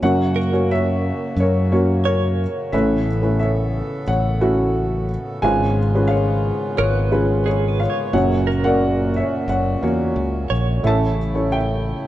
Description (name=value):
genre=acoustic folk-pop ballad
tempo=89 BPM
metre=4/4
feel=straight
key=unclear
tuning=A4 = 441 Hz
part: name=dark upright piano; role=melody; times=0.0-12.1 s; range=F#1 to A5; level=-19 LUFS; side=equal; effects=none
part: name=pedal harmonium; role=sustained chords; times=0.0-12.1 s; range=A#2 to A4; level=-32 LUFS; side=left 1 dB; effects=none
part: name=fingered electric bass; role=bass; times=0.0-11.9 s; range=F#1 to F#2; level=-21 LUFS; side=equal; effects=none
part: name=direct-recorded clean electric guitar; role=arpeggios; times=0.4-11.1 s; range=G#4 to C#5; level=-28 LUFS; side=right 6 dB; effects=tremolo
room=light reverb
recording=band playing live in one room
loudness=-17 LUFS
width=side -14 dB against mid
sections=0.0-12.1 A section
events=none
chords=0.0 F#; 2.7 Aadd9; 5.4 C#7/G#; 8.1 F#; 10.8 A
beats=| 0.02 0.70 1.38 2.05 | 2.73 3.40 4.08 4.75 | 5.43 6.10 6.78 7.45 | 8.13 8.80 9.48 10.15 | 10.83 11.51